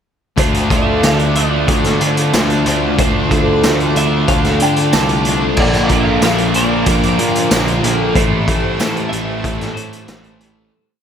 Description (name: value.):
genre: rock, shoegaze and dream pop.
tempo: 93 BPM.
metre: 4/4.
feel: straight.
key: D minor.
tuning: A4 = 438 Hz.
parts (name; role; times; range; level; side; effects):
twelve-string electric guitar; melody; 0.4-10.4 s; C5 to A5; -23 LUFS; right 1 dB; phaser, diffuse ambient delay.
string machine, full ensemble; sustained chords; 0.7-10.7 s; Bb3 to E6; -24 LUFS; equal; phaser, ensemble chorus.
picked twelve-string acoustic guitar; arpeggios; 0.4-10.7 s; E4 to C5; -25 LUFS; left 1 dB; wide subtle chorus, diffuse ambient delay.
overdriven electric guitar; riff; 0.4-10.7 s; A2 to F4; -23 LUFS; right 8 dB; reverse reverb.
overdriven electric guitar; riff; 0.4-10.7 s; A2 to D4; -21 LUFS; equal; spring reverb.
thick fuzz guitar; riff; 0.4-10.7 s; A2 to D4; -22 LUFS; left 8 dB; distortion, lush chorus.
fuzz picked electric bass; bass; 0.4-10.7 s; A1 to D3; -19 LUFS; equal; overdrive.
raw garage drum kit; drums; 0.4-10.6 s; crash cymbal, hi-hat, kick drum, snare drum; -18 LUFS; equal; none.
tambourine; percussion; 1.0-10.2 s; none; -28 LUFS; right 9 dB; none.
room: moderate plate reverb, RT60 2.5 s.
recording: dreamy mix soaked in reverb.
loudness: -12 LUFS.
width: side -8 dB against mid.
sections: 0.4-10.7 A section.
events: fade-out 8.2-10.7.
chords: 0.4 Dm7; 5.6 Bb6; 8.2 Am7.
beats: | 0.38 1.04 1.69 2.34 | 2.99 3.64 4.29 4.94 | 5.58 6.23 6.87 7.51 | 8.16 8.80 9.44 10.09.